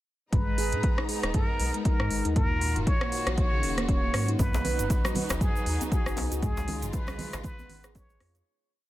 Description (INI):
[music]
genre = afro house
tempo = 118 BPM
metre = 4/4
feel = swing 57% on 16ths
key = G# dorian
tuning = A4 = 442 Hz
[part]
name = trumpet with plunger mute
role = melody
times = 0.3-8.4 s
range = G#4 to C#5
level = -34 LUFS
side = equal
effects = vintage 12-bit sampler grit, dub echo
[part]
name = warm studio string section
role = sustained chords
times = 0.3-8.4 s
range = C#3 to A#5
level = -37 LUFS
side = equal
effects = sidechain pumping
[part]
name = handpan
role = arpeggios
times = 0.3-8.4 s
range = A#2 to C#5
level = -34 LUFS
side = equal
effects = sidechain pumping, dub echo
[part]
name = round analog bass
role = bass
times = 0.3-8.4 s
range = D#1 to G#2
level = -31 LUFS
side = equal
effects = sidechain pumping
[part]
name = deep house drum kit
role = drums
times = 0.3-8.4 s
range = hi-hat, rim click, toms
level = -33 LUFS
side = equal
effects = none
[part]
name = electronic kick drum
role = drums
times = 0.3-8.1 s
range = none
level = -27 LUFS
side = equal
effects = none
[part]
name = congas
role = percussion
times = 4.4-8.2 s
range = none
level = -37 LUFS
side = right 3 dB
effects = none
[part]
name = djembe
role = percussion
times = 4.4-8.1 s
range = none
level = -39 LUFS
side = left 1 dB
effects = none
[part]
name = egg shaker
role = percussion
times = 4.4-8.4 s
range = none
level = -41 LUFS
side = right 4 dB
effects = none
[sound]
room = studio ambience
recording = none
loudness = -25 LUFS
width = side -15 dB against mid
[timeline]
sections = 0.3-8.5 drop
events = drop 0.3-8.5; fade-out 5.7-8.5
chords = 0.3 G#madd9; 2.4 D#m7; 4.4 B; 6.4 C#add9